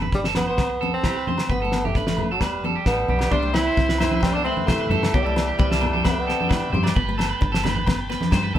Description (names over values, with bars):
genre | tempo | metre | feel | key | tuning
highlife guitar band | 132 BPM | 4/4 | straight | unclear | A4 = 440 Hz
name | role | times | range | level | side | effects
nylon-string guitar | accompaniment | 0.0-8.6 s | A3 to E4 | -32 LUFS | left 4 dB | none
electric guitar at the edge of break-up | arpeggios | 0.0-8.6 s | G4 to D5 | -27 LUFS | right 3 dB | none
deep dub fingered electric bass | bass | 0.0-8.6 s | E1 to C3 | -27 LUFS | equal | none
congas | percussion | 0.0-8.6 s | none | -28 LUFS | right 1 dB | none
mellow tenor saxophone | melody | 0.1-6.7 s | G3 to E4 | -25 LUFS | right 1 dB | none
damped 70s drum kit | drums | 0.1-8.4 s | kick drum, snare drum | -24 LUFS | equal | none
agogo bells | percussion | 0.4-8.4 s | none | -33 LUFS | left 2 dB | none
warm alto saxophone | second line | 2.9-6.7 s | E3 to C4 | -33 LUFS | left 4 dB | none
overdriven combo organ | sustained chords | 3.3-8.6 s | E5 to D6 | -34 LUFS | left 1 dB | none
room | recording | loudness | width
moderate large studio reverb, RT60 1.0 s | band playing live in one room | -19 LUFS | side -11 dB against mid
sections
0.0-3.3 A section; 3.3-8.6 B section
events
none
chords
0.0 G; 0.6 C; 1.5 G; 2.4 Em; 3.3 C; 7.0 Gadd9